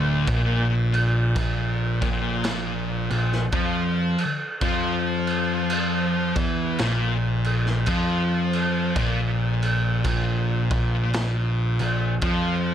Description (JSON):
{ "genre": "stoner and doom metal", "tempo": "55 BPM", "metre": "4/4", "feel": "swing 61% on 8ths", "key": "unclear", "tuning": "A4 = 439 Hz", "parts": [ { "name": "thick fuzz guitar", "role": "riff", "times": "0.0-12.7 s", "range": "D2 to F3", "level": "-26 LUFS", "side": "left 7 dB", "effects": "distortion" }, { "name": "thick fuzz guitar", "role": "riff", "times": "0.0-12.7 s", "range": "D2 to F3", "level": "-25 LUFS", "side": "right 5 dB", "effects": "distortion" }, { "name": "overdriven picked electric bass", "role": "bass", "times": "0.0-12.7 s", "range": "D1 to F2", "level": "-30 LUFS", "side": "equal", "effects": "none" }, { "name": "raw garage drum kit", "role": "drums", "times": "0.3-12.5 s", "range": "crash cymbal, kick drum, snare drum", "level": "-28 LUFS", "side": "right 1 dB", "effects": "none" } ], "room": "moderate studio reverb, RT60 0.6 s", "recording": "none", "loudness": "-21 LUFS", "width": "side -10 dB against mid", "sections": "0.0-12.7 A section", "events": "none", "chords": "0.3 Bb5" }